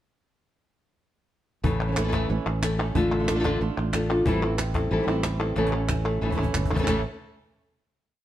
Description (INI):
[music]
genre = flamenco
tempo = 184 BPM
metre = 4/4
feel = straight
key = unclear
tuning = A4 = 440 Hz
[part]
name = nylon-string guitar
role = accompaniment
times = 1.6-7.0 s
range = A2 to A4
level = -27 LUFS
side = left 2 dB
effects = none
[part]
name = flamenco guitar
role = stabs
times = 1.6-7.0 s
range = A2 to F4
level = -31 LUFS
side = right 6 dB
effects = none
[part]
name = fretless electric bass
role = bass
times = 1.6-7.0 s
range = G1 to A1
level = -27 LUFS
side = equal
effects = none
[part]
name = cajon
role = percussion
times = 1.6-6.9 s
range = none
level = -30 LUFS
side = left 2 dB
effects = none
[part]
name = palmas hand claps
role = percussion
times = 1.8-6.9 s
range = none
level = -33 LUFS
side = equal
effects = none
[sound]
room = light reverb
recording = dark, warm production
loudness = -23 LUFS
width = side -12 dB against mid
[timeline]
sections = 1.6-6.9 groove; 6.9-8.2 final chord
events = drum fill 5.6-6.9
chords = 1.6 A; 3.0 Dm/A; 4.3 C/A; 5.6 A